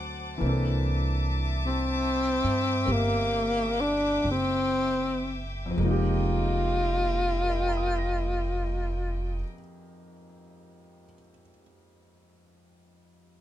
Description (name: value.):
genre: jazz ballad.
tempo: 37-53 BPM.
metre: 4/4.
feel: swing 66% on 8ths.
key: unclear.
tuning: A4 = 441 Hz.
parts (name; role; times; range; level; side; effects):
clear grand piano; accompaniment; 0.0-13.4 s; F2 to Bb6; -34 LUFS; left 1 dB; none.
warm studio string section; sustained chords; 0.0-9.4 s; Bb3 to D6; -35 LUFS; left 1 dB; none.
upright bass; bass; 0.0-9.4 s; F1 to G2; -29 LUFS; right 1 dB; none.
breathy tenor saxophone; melody; 1.7-9.5 s; Bb3 to F4; -27 LUFS; left 1 dB; none.
room: little or no reverb.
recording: none.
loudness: -24 LUFS.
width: side -12 dB against mid.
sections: 0.4-5.8 A section; 5.8-12.3 B section.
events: slowing down 0.0-5.8.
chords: 0.4 C13; 5.8 Fm11.